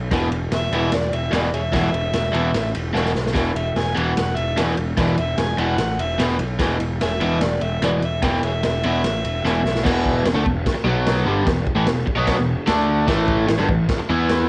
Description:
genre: garage rock duo or trio.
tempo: 148 BPM.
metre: 4/4.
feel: straight.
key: unclear.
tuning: A4 = 441 Hz.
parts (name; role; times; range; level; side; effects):
fuzz picked electric bass; bass; 0.0-14.5 s; E1 to E2; -27 LUFS; equal; overdrive.
overdriven electric guitar; riff; 0.1-14.5 s; E2 to E4; -23 LUFS; equal; cassette tape.
raw garage drum kit; drums; 0.1-14.4 s; crash cymbal, kick drum, ride cymbal, snare drum; -27 LUFS; equal; cassette tape.
overdriven harmonica; melody; 0.6-9.8 s; G#4 to G#5; -28 LUFS; equal; cassette tape.
room: small room ambience.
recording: home recording on cassette.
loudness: -20 LUFS.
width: mono.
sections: 0.0-9.9 A section; 9.9-14.5 B section.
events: drum fill 2.9-3.4, 9.4-9.9.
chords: 0.0 E5; 10.9 B5; 11.3 E5; 12.7 D5; 13.1 A5; 14.1 E5.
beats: | 0.11 0.51 0.92 1.32 | 1.73 2.13 2.54 2.94 | 3.35 3.76 4.17 4.57 | 4.98 5.38 5.79 6.20 | 6.61 7.01 7.42 7.83 | 8.23 8.64 9.04 9.45 | 9.85 10.26 10.66 11.07 | 11.47 11.87 12.28 12.68 | 13.08 13.49 13.89 14.29.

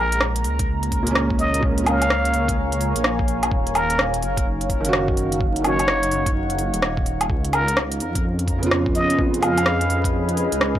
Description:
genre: future garage.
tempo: 127 BPM.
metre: 4/4.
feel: swing 63% on 16ths.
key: Eb minor.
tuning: A4 = 440 Hz.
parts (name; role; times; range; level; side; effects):
trumpet with plunger mute; melody; 0.0-10.1 s; Bb4 to F5; -25 LUFS; equal; tape echo.
deep dark ambient pad; sustained chords; 0.0-10.8 s; Bb3 to Bb5; -26 LUFS; equal; chorus, built-in reverb, sidechain pumping.
dark detuned saw bass; bass; 0.0-10.8 s; Eb1 to F2; -25 LUFS; equal; tube saturation, sidechain pumping.
organic electronic drum kit; drums; 0.1-10.7 s; hi-hat, rim click, woodblock; -23 LUFS; equal; overdrive.
electronic kick drum; drums; 0.6-10.8 s; none; -24 LUFS; equal; none.
felt-muted upright piano; accompaniment; 1.0-9.5 s; Bb2 to Gb4; -25 LUFS; right 2 dB; sidechain pumping, analog delay.
room: light reverb.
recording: dry, gritty hardware recording, transformer saturation, vinyl crackle.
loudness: -18 LUFS.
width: side -12 dB against mid.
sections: 0.0-10.8 A section.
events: none.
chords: 0.0 Bbm7; 3.5 Ebm7; 7.3 Db7.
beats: 0.21 0.68 1.15 | 1.63 2.10 2.57 3.04 | 3.52 3.99 4.46 4.93 | 5.41 5.88 6.35 6.82 | 7.30 7.77 8.24 8.71 | 9.19 9.66 10.13 10.60.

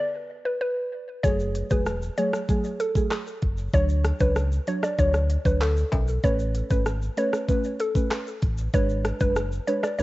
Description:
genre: dancehall.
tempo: 96 BPM.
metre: 4/4.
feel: straight.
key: F# minor.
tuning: A4 = 440 Hz.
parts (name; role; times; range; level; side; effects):
mallet-like synth pluck; melody; 0.0-10.0 s; A4 to D5; -28 LUFS; equal; chorus, cassette tape, tape echo.
deep mellow chord stab; accompaniment; 1.2-10.0 s; F#3 to C#5; -29 LUFS; right 1 dB; chorus, cassette tape.
sub bass with octave; bass; 1.2-10.0 s; E1 to D2; -26 LUFS; equal; none.
pop drum kit; drums; 1.2-10.0 s; handclaps, hi-hat, kick drum, rim click, shaker; -26 LUFS; equal; cassette tape.
tube shaker and timbales; percussion; 1.2-10.0 s; none; -42 LUFS; left 4 dB; none.
room: little or no reverb.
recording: home recording on cassette, nothing above 7.9 kHz.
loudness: -22 LUFS.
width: side -18 dB against mid.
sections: 0.0-10.0 A section.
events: break 0.0-1.2.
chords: 0.0 N.C.; 1.2 F#madd9; 3.7 Dmaj7; 6.2 Aadd9; 8.7 G#dim.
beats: 0.61 | 1.24 1.86 2.49 3.11 | 3.74 4.36 4.99 5.61 | 6.24 6.86 7.49 8.11 | 8.74 9.36 9.99.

